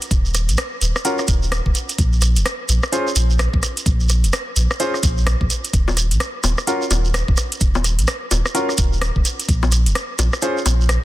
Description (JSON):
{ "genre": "UK garage, two-step garage", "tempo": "128 BPM", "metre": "4/4", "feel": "swing 61% on 16ths", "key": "unclear", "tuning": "A4 = 441 Hz", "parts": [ { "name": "garage drum kit", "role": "drums", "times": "0.0-11.0 s", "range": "bongos, hi-hat, rim click", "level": "-24 LUFS", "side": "left 1 dB", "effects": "soft clipping on snare, studio ambience" }, { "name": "shekere", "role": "percussion", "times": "0.0-11.0 s", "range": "none", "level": "-26 LUFS", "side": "right 3 dB", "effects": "none" }, { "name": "soft dub sub bass", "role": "bass", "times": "0.1-11.0 s", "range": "Eb1 to Bb1", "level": "-18 LUFS", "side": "equal", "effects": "none" }, { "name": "electronic kick drum", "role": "drums", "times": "0.1-9.6 s", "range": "none", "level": "-19 LUFS", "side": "equal", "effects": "studio ambience" }, { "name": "warm baby grand piano", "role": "stabs", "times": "1.0-10.6 s", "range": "Db4 to C5", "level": "-24 LUFS", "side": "equal", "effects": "tape echo" } ], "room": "digital ambience", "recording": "dense, heavily limited modern master", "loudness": "-16 LUFS", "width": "side -16 dB against mid", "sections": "0.0-11.0 A section", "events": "none", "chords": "0.0 N.C.; 9.5 Bb5" }